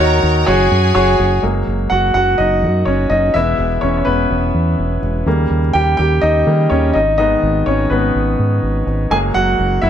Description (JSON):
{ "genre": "pop", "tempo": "125 BPM", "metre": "4/4", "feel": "straight", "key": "unclear", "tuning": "A4 = 440 Hz", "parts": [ { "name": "clear studio violin section", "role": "second line", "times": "0.0-1.4 s", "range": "G#4 to A#5", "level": "-20 LUFS", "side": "right 2 dB", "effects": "none" }, { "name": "bright grand piano", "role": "accompaniment", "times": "0.0-9.9 s", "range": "C#3 to G#5", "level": "-15 LUFS", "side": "equal", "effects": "none" }, { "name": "fingered electric bass", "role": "bass", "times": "0.0-9.9 s", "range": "E1 to D#3", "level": "-17 LUFS", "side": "right 1 dB", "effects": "none" } ], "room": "light reverb, studio ambience", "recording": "none", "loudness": "-13 LUFS", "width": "side -9 dB against mid", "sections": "0.0-1.4 A section; 1.4-9.9 B section", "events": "grand piano solo 1.4-9.9", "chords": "0.5 F#sus2; 1.4 F#add9; 3.3 E; 5.3 D#7; 6.9 G#m; 9.1 F#add9" }